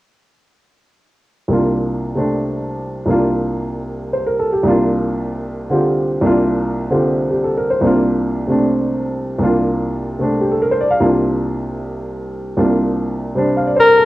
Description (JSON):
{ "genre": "jazz", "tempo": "152 BPM", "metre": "4/4", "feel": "swing 66% on 8ths", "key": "unclear", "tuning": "A4 = 439 Hz", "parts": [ { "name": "warm upright piano", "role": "accompaniment", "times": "1.5-14.1 s", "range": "C2 to F5", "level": "-15 LUFS", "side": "equal", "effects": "cassette tape" }, { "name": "mellow soprano saxophone", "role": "melody", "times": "13.8-14.1 s", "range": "Bb4", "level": "-7 LUFS", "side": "left 2 dB", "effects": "cassette tape" } ], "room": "moderate spring reverb, RT60 1.1 s", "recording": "home recording on cassette", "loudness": "-15 LUFS", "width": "side -17 dB against mid", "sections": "1.5-14.1 A section", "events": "none", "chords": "1.5 C9sus4" }